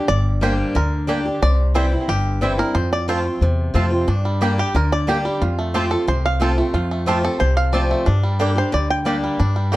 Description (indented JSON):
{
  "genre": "bluegrass",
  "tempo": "180 BPM",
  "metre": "4/4",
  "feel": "straight",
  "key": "G dorian",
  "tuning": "A4 = 439 Hz",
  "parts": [
    { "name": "picked swing-style acoustic guitar", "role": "accompaniment", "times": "0.0-9.8 s", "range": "F2 to G4", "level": "-22 LUFS", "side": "left 1 dB", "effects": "none" },
    { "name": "bluegrass banjo", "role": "melody", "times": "0.1-9.8 s", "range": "G3 to G5", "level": "-23 LUFS", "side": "right 1 dB", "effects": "none" },
    { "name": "upright bass", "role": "bass", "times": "0.1-9.8 s", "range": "G1 to G2", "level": "-20 LUFS", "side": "equal", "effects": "none" },
    { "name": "mandolin", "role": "stabs", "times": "0.4-9.8 s", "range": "Bb3 to A5", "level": "-27 LUFS", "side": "right 4 dB", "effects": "tape echo" }
  ],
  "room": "light reverb",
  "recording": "dark, warm production",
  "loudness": "-17 LUFS",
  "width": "side -17 dB against mid",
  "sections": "0.0-9.8 A section",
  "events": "five-string banjo solo 0.0-9.8",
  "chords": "0.0 Gm; 1.4 C; 2.8 F; 4.1 Gm; 5.4 F; 8.1 Gm",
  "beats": "| 0.10 0.43 0.76 1.09 | 1.43 1.76 2.09 2.42 | 2.76 3.09 3.42 3.75 | 4.09 4.42 4.75 5.08 | 5.42 5.75 6.08 6.41 | 6.75 7.08 7.41 7.74 | 8.07 8.41 8.74 9.07 | 9.40 9.73"
}